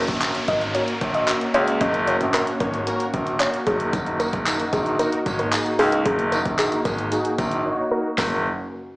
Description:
dance-pop; 113 BPM; 4/4; straight; F# major; A4 = 441 Hz
soft round pluck; melody; 0.0-8.4 s; G#4 to D#5; -25 LUFS; equal; chorus, low-pass filter, digital delay
big bright polysynth; accompaniment; 0.0-8.4 s; A#3 to C#5; -27 LUFS; equal; sidechain pumping, low-pass filter, slapback echo
warm analog pad; sustained chords; 0.0-8.4 s; A#3 to F#4; -29 LUFS; equal; chorus, sidechain pumping, low-pass filter
downlifter; sound effects; 0.0-3.9 s; -32 LUFS; equal; slapback echo
clear grand piano; bass; 0.1-8.4 s; F#1 to C#2; -24 LUFS; equal; sidechain pumping
deep house drum kit; drums; 0.1-8.3 s; handclaps, hi-hat, kick drum, snare drum; -27 LUFS; equal
tambourine; percussion; 3.9-8.4 s; -36 LUFS; equal
light reverb; live gig heard through the venue's PA, club reverb, small speaker sound; -19 LUFS; side -22 dB against mid
0.0-8.2 A section
filter sweep 0.0-8.2; silent gap 7.6-8.2
0.0 F#; 3.7 D#m/F#; 8.2 F#
0.22 0.75 1.28 | 1.81 2.34 2.87 3.40 | 3.93 4.46 4.99 5.53 | 6.06 6.59 7.12 7.65 | 8.18

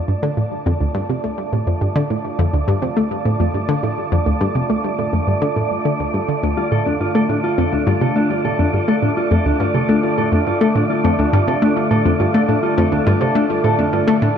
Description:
ambient, sequencer-driven space music; 104 BPM; 4/4; straight; D minor; A4 = 440 Hz
sweeping resonant pad; sustained chords; 0.0-14.4 s; D3 to A5; -22 LUFS; equal; chorus
wind-like tuned noise texture; texture; 0.0-14.4 s; D5; -26 LUFS; right 4 dB; built-in reverb
analog pluck; riff; 0.1-14.3 s; D2 to A3; -18 LUFS; equal; chorus, tape echo
mellow electric guitar; arpeggios; 6.6-14.3 s; D4 to A4; -21 LUFS; left 1 dB; auto-pan, tape echo
moderate plate reverb, RT60 3.1 s; dark, warm production; -15 LUFS; side -8 dB against mid
0.0-14.4 A section
fade-in on analog synth pad 0.0-14.4; filter sweep on synth arpeggio sound 0.0-14.4
0.0 Dm
0.23 0.80 1.38 | 1.96 2.53 3.11 3.69 | 4.26 4.84 5.42 6.00 | 6.57 7.15 7.73 8.30 | 8.88 9.46 10.03 10.61 | 11.19 11.77 12.34 12.92 | 13.50 14.07

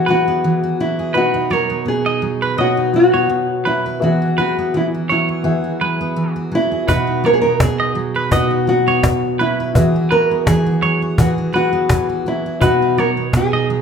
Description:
acoustic pop; 84 BPM; 4/4; swing 55% on 16ths; B major; A4 = 440 Hz
nylon-string guitar; melody; 0.0-13.8 s; E4 to A#4; -18 LUFS; left 2 dB
dark upright piano; accompaniment; 0.0-13.8 s; B3 to E5; -27 LUFS; left 5 dB
picked steel-string acoustic guitar; accompaniment; 0.0-13.8 s; B2 to B4; -20 LUFS; right 3 dB
semi-hollow electric guitar; arpeggios; 0.1-13.7 s; B4 to D#5; -21 LUFS; right 4 dB
cajon; drums; 6.9-13.5 s; -17 LUFS; equal
moderate large studio reverb, RT60 1.3 s; band playing live in one room; -14 LUFS; side -6 dB against mid
0.0-13.8 A section
0.0 Eadd9; 1.1 B; 4.0 Eadd9; 6.9 B; 9.7 Eadd9; 12.6 B
0.43 | 1.14 1.86 2.58 3.30 | 4.01 4.73 5.45 6.16 | 6.88 7.60 8.31 9.03 | 9.75 10.46 11.18 11.90 | 12.61 13.33

